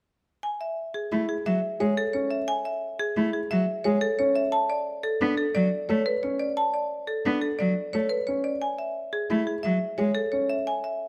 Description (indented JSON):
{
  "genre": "classical, minimalist pattern music",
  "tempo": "176 BPM",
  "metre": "6/4",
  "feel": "straight",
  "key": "F# minor",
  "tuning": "A4 = 440 Hz",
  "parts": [
    { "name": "marimba with medium hard mallets", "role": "melody", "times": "0.4-11.1 s", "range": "G#4 to A5", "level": "-29 LUFS", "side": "equal", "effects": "none" },
    { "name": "rich cello", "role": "accompaniment", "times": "1.1-10.1 s", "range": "F#3 to B3", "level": "-30 LUFS", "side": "equal", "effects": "none" },
    { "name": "dark baby grand piano", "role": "arpeggios", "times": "1.1-10.5 s", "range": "C#4 to A4", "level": "-33 LUFS", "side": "equal", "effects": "none" }
  ],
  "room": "light reverb",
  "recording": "close, detailed microphones",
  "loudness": "-27 LUFS",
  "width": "mono",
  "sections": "0.4-11.1 A section",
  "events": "none",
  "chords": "0.4 F#m7; 4.5 D6; 8.6 F#m7"
}